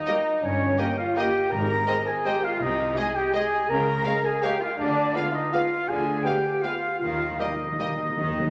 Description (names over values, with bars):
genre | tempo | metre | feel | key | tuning
classical, orchestral ballroom waltz | 146-178 BPM | 3/4 | rubato | Ab major | A4 = 440 Hz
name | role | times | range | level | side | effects
concert flute | second line | 0.0-8.5 s | Db5 to Bb5 | -33 LUFS | equal | none
warm oboe | second line | 0.0-8.5 s | Db5 to Bb5 | -34 LUFS | equal | none
mellow French horn section | sustained chords | 0.0-8.5 s | Db4 to Bb4 | -29 LUFS | equal | none
rich studio violin section | melody | 0.1-7.9 s | Eb5 to F5 | -39 LUFS | equal | none
clear clarinet | second line | 0.1-7.9 s | Eb5 to G5 | -42 LUFS | equal | none
rich chamber violin section | second line | 0.1-7.9 s | Bb4 to Eb5 | -44 LUFS | equal | none
mellow bassoon | accompaniment | 0.1-7.9 s | Ab3 to C4 | -38 LUFS | equal | none
warm studio viola section | accompaniment | 0.1-7.9 s | G3 to Bb3 | -40 LUFS | equal | none
clear studio cello section | bass | 0.4-8.5 s | G2 to Eb3 | -36 LUFS | equal | none
rich studio double bass section | bass | 0.4-8.5 s | G1 to Eb2 | -38 LUFS | equal | none
timpani | percussion | 1.5-2.0, 7.0-8.5 s | Ab2 to Eb3 | -36 LUFS | equal | none
room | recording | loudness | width
wet recital hall reverb, RT60 1.8 s | none | -25 LUFS | mono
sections
0.0-8.5 A section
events
timpani fill 7.0-8.5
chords
0.4 Eb7/G; 1.5 Ab; 2.6 Ab/C; 3.7 Db; 4.8 Ddim7; 7.0 Eb5